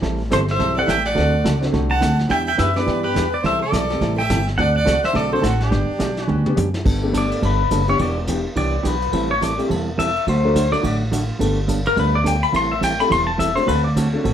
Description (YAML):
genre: country, western swing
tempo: 211 BPM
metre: 4/4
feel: swing 60% on 8ths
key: G major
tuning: A4 = 444 Hz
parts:
  - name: hollow-body jazz guitar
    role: accompaniment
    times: 0.0-14.3 s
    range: C3 to A4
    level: -24 LUFS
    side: right 3 dB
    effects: none
  - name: upright bass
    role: bass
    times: 0.0-14.3 s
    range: E1 to G2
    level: -22 LUFS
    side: equal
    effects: none
  - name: vintage brush drum kit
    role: drums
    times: 0.0-14.3 s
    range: brushed snare drum, crash cymbal, hi-hat, kick drum, ride cymbal, snare drum, toms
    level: -27 LUFS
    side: equal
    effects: none
  - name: pedal steel guitar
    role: melody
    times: 0.3-13.9 s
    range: G4 to C6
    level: -21 LUFS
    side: left 2 dB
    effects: none
  - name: clear fiddle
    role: second line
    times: 0.3-6.5 s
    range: D4 to F#5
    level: -24 LUFS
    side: right 3 dB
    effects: none
  - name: clear upright piano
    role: accompaniment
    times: 0.3-14.2 s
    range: F#3 to C5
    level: -25 LUFS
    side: left 2 dB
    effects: none
room: moderate studio ambience, RT60 0.5 s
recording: none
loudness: -17 LUFS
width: side -9 dB against mid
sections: 0.0-6.9 A section; 6.9-14.3 B section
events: drum fill 6.3-6.9; pedal steel guitar solo 6.9-14.3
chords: 0.0 Am7; 1.2 D7; 2.3 Em7; 3.4 C6; 4.6 D7; 5.7 G; 6.9 Gadd9; 8.0 Em7; 9.1 Am7; 10.3 D; 11.4 Gadd9; 12.5 Am7; 13.7 D7